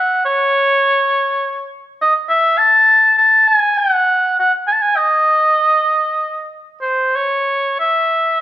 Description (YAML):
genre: fado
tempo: 94-104 BPM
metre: 4/4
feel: rubato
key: C# harmonic minor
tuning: A4 = 440 Hz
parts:
  - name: warm oboe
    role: solo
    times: 0.0-8.4 s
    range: B#4 to A5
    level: -12 LUFS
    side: equal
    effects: none
room: moderate recital hall reverb, RT60 1.6 s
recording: none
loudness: -12 LUFS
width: side -13 dB against mid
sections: 0.0-8.4 A section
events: none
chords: none